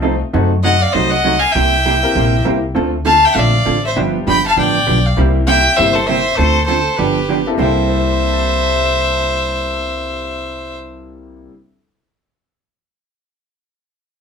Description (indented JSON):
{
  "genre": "country, western swing",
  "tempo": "198 BPM",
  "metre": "4/4",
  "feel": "swing 61% on 8ths",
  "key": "C mixolydian",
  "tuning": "A4 = 440 Hz",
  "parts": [
    { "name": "bright upright piano", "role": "accompaniment", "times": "0.0-11.7 s", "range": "C3 to C7", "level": "-22 LUFS", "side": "left 5 dB", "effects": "none" },
    { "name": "vintage hollow-body jazz guitar", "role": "accompaniment", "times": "0.0-11.5 s", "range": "C3 to A4", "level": "-19 LUFS", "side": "right 6 dB", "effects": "none" },
    { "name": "upright bass", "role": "bass", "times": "0.0-11.5 s", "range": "G1 to F#2", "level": "-19 LUFS", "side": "left 1 dB", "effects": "none" },
    { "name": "clear fiddle", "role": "melody", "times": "0.6-10.8 s", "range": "B4 to B5", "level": "-16 LUFS", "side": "left 2 dB", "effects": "none" },
    { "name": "clear fiddle", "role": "second line", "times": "0.6-10.8 s", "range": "G4 to G5", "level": "-20 LUFS", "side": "right 2 dB", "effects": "none" }
  ],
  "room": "wet studio reverb, RT60 0.6 s",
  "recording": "band playing live in one room",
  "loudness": "-12 LUFS",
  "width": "side -6 dB against mid",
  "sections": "0.0-7.6 A section; 7.6-10.0 B section",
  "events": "none",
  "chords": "0.3 F#dim7; 1.5 C7; 2.8 Dm7; 4.0 G7; 5.2 C7; 6.4 Dm7; 7.0 G7; 7.6 C13"
}